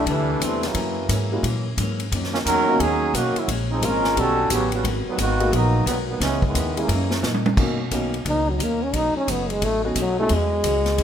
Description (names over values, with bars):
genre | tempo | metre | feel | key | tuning
jazz, big band swing | 176 BPM | 4/4 | swing 64% on 8ths | B major | A4 = 439 Hz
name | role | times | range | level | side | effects
clear trombone section | second line | 0.0-7.2 s | A#2 to A#4 | -22 LUFS | right 2 dB | none
upright bass | bass | 0.0-11.0 s | F#1 to B2 | -25 LUFS | equal | none
vintage hollow-body jazz guitar | accompaniment | 0.1-11.0 s | F#2 to A#4 | -30 LUFS | left 4 dB | none
swinging big-band drum kit | drums | 0.1-11.0 s | crash cymbal, hi-hat, kick drum, ride cymbal, snare drum, toms | -27 LUFS | equal | none
warm upright piano | accompaniment | 1.3-10.3 s | G3 to A4 | -28 LUFS | equal | none
mellow trombone | melody | 8.3-11.0 s | C#3 to D#4 | -22 LUFS | equal | none
room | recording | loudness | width
moderate recital hall reverb, RT60 1.6 s | minimal, uncompressed stereo recording | -19 LUFS | side -9 dB against mid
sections
0.0-7.6 A section; 7.6-11.0 B section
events
trombone section solo 0.0-7.6; drum fill 7.2-7.6; trombone solo 7.6-11.0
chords
0.0 C69; 0.7 F#7; 2.1 Bmaj9; 3.5 A#m7; 4.2 D#7alt; 4.8 G#m9; 6.2 C#m9; 6.9 F#13; 7.6 Bmaj9; 8.9 B7; 10.3 E69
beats
0.05 0.40 | 0.74 1.08 1.42 1.76 | 2.11 2.45 2.79 3.13 | 3.47 3.81 4.16 4.50 | 4.84 5.18 5.52 5.86 | 6.20 6.54 6.88 7.23 | 7.57 7.91 8.25 8.59 | 8.93 9.28 9.62 9.96 | 10.30 10.64 10.99